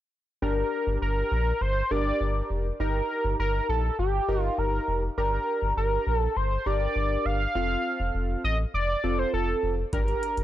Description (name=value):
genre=synth-pop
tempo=101 BPM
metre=4/4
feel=straight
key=G minor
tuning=A4 = 441 Hz
part: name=octave-doubled lead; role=melody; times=0.4-10.4 s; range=G4 to F5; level=-28 LUFS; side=equal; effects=chorus, phaser
part: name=warm analog keys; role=accompaniment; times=0.4-10.4 s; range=C4 to Bb4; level=-32 LUFS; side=equal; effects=chorus, phaser
part: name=round analog bass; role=bass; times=0.4-10.4 s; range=F1 to Bb1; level=-28 LUFS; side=equal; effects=none
part: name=electro analog drum machine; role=drums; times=9.9-10.4 s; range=hi-hat, kick drum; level=-30 LUFS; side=equal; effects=none
room=little or no reverb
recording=dry, gritty hardware recording, cassette tape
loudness=-24 LUFS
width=side -13 dB against mid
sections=0.4-10.4 A section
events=none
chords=0.4 Gm; 2.8 Eb/G; 5.2 Gm; 7.6 F; 9.9 Gm